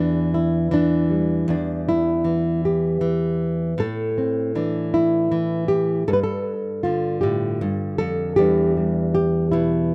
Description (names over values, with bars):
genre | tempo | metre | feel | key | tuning
folk, solo fingerstyle acoustic guitar | 52 BPM (dotted quarters) | 6/8 | straight | unclear | A4 = 444 Hz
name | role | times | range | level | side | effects
nylon-string guitar | solo | 0.0-9.9 s | E2 to B4 | -21 LUFS | equal | none
room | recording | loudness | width
little or no reverb | recorded outdoors, with no room sound | -21 LUFS | mono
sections
0.0-8.4 A section; 8.4-9.9 B section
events
none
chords
0.0 Em; 3.8 Am; 6.1 Gsus2; 8.4 Em7